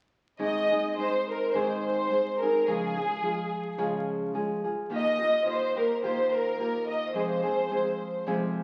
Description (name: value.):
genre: mexican folk, mariachi.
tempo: 107 BPM.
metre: 4/4.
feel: swing 53% on 8ths.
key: Ab major.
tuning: A4 = 440 Hz.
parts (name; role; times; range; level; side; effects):
warm studio violin section; melody; 0.4-8.2 s; Ab4 to Eb5; -29 LUFS; equal; none.
nylon-string guitar; accompaniment; 0.4-8.6 s; F2 to Ab4; -33 LUFS; equal; none.
room: wet large studio reverb, RT60 1.3 s.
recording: very old 78 rpm record, vinyl crackle.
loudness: -28 LUFS.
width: mono.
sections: 0.4-8.6 A section.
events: none.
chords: 0.4 Ab; 2.7 Db; 4.9 Ebadd9; 7.1 Fm.